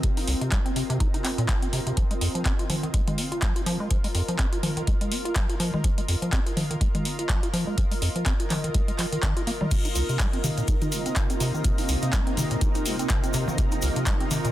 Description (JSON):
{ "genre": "acid house", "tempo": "124 BPM", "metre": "4/4", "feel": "swing 57% on 16ths", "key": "C minor", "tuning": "A4 = 441 Hz", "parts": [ { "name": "acid bass, square", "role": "riff", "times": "0.0-14.5 s", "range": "C2 to F4", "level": "-29 LUFS", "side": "equal", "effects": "tube saturation, sidechain pumping, tape echo" }, { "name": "booming analog drum machine", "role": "drums", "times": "0.0-14.5 s", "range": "crash cymbal, handclaps, hi-hat, toms", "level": "-30 LUFS", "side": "left 1 dB", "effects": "none" }, { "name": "electronic kick drum", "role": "drums", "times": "0.0-14.2 s", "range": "none", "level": "-26 LUFS", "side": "equal", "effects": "none" }, { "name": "granular cloud pad", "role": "texture", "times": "0.0-14.5 s", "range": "C4 to Eb5", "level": "-32 LUFS", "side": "right 1 dB", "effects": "built-in reverb, sidechain pumping" }, { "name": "string machine, full ensemble", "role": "sustained chords", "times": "9.7-14.5 s", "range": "C3 to Eb4", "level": "-33 LUFS", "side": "equal", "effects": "phaser, ensemble chorus, sidechain pumping" }, { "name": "tube shaker", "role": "percussion", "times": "9.7-14.5 s", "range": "none", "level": "-37 LUFS", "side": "left 2 dB", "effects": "none" } ], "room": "little or no reverb", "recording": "dense, heavily limited modern master", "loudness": "-23 LUFS", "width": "side -14 dB against mid", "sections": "0.0-14.5 A section", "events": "none", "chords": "0.0 Cm7; 2.0 Fm7; 9.7 Cm7" }